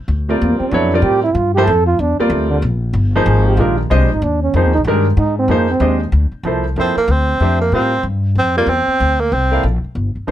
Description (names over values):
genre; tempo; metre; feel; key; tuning
jazz; 189 BPM; 3/4; swing 62% on 8ths; unclear; A4 = 440 Hz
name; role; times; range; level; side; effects
upright bass; bass; 0.1-10.3 s; G1 to A2; -16 LUFS; left 1 dB; none
dark trombone; second line; 0.3-6.0 s; D3 to A4; -17 LUFS; right 3 dB; none
clear concert grand piano; accompaniment; 0.3-10.3 s; Eb3 to F5; -18 LUFS; equal; none
breathy tenor saxophone; melody; 6.8-9.6 s; Bb3 to C4; -16 LUFS; right 2 dB; none
room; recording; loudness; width
little or no reverb; close, detailed microphones; -13 LUFS; side -12 dB against mid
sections
0.0-6.4 A section; 6.4-10.3 A section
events
trombone solo 0.0-6.4; tenor saxophone solo 6.4-10.3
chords
0.0 C9sus4; 2.6 Bb9sus4; 6.4 C9sus4